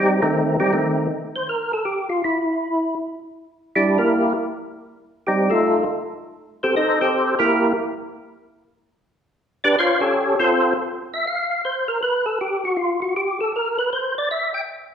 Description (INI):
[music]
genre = jazz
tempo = 159 BPM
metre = 4/4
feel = swing 65% on 8ths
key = unclear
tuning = A4 = 439 Hz
[part]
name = percussive tonewheel organ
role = solo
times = 0.0-14.6 s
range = Eb3 to G5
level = -18 LUFS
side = equal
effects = slow rotary speaker, chorus vibrato
[sound]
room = wet large studio reverb, RT60 1.4 s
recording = band playing live in one room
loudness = -18 LUFS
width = side -8 dB against mid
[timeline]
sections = 0.0-14.9 A section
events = tonewheel organ solo 0.0-14.9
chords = 0.0 Am7b5/Eb; 1.5 Gm6; 4.5 F9; 7.5 Edim/Bb; 9.0 G/D; 9.8 A7alt; 10.5 Cadd11; 12.0 N.C.; 13.5 Gm6